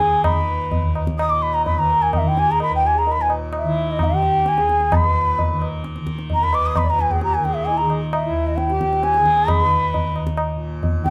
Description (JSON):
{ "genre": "indian classical, Hindustani", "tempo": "130 BPM", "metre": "5/4", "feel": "straight", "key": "Eb raga bhairav", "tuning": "A4 = 439 Hz", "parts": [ { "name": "breathy mellow bansuri", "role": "melody", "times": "0.0-11.1 s", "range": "Eb5 to Eb6", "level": "-21 LUFS", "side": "equal", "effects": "none" }, { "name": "pedal harmonium", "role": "second line", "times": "0.0-10.2 s", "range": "Eb4 to Eb5", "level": "-31 LUFS", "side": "equal", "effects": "none" }, { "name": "tanpura", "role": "drone", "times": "0.0-11.1 s", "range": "Eb2 to Eb3", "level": "-27 LUFS", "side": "equal", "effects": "none" }, { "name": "tabla", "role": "percussion", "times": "0.0-11.1 s", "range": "none", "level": "-25 LUFS", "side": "equal", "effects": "none" } ], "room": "moderate studio reverb, RT60 0.5 s", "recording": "none", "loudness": "-19 LUFS", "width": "mono", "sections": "0.0-11.1 A section", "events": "speeding up 0.0-11.1", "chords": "none" }